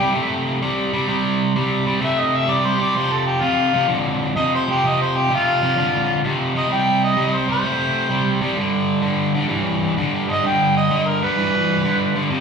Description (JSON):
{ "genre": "blues", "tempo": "128 BPM", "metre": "4/4", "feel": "swing 68% on 8ths", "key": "unclear", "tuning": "A4 = 440 Hz", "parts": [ { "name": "mellow harmonica", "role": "melody", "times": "0.0-12.1 s", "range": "F4 to G5", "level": "-20 LUFS", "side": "right 1 dB", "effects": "overdrive, plate reverb, slapback echo" }, { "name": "cranked stack guitar", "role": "riff", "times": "0.0-12.4 s", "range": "F2 to A3", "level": "-19 LUFS", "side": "equal", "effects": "overdrive, slapback echo" } ], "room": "moderate club reverb, RT60 0.8 s", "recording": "live gig heard through the venue's PA, club reverb, studio ambience", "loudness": "-17 LUFS", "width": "side -6 dB against mid", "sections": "0.0-12.4 A section", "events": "harmonica solo 0.0-12.4", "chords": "0.0 C5; 3.0 F5; 6.7 C5; 8.6 G", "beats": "0.15 0.62 | 1.09 1.55 2.02 2.49 | 2.96 3.42 3.89 4.36 | 4.83 5.29 5.76 6.23 | 6.70 7.17 7.63 8.10 | 8.57 9.04 9.51 9.97 | 10.44 10.91 11.38 11.85 | 12.31" }